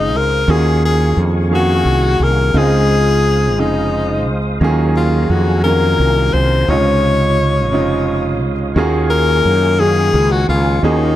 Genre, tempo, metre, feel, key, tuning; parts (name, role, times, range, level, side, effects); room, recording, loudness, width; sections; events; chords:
slow six-eight R&B; 58 BPM (dotted quarters); 6/8; straight; Eb dorian; A4 = 439 Hz
breathy tenor saxophone; melody; 0.0-11.2 s; Eb4 to Db5; -16 LUFS; left 4 dB; plate reverb
clear grand piano; accompaniment; 0.0-11.2 s; C3 to F5; -18 LUFS; right 3 dB; plate reverb
tonewheel organ; sustained chords; 0.0-11.2 s; Ab4 to Eb6; -27 LUFS; left 1 dB; chorus vibrato, slow rotary speaker, plate reverb
fretless electric bass; bass; 0.0-11.2 s; F1 to Gb2; -16 LUFS; equal
moderate studio reverb, RT60 0.6 s; dark, warm production; -12 LUFS; side -13 dB against mid
0.0-11.2 A section
0.5 Ebm11; 2.5 Dbmaj9; 4.6 Ebm11; 6.7 Dbmaj9; 8.7 Ebm11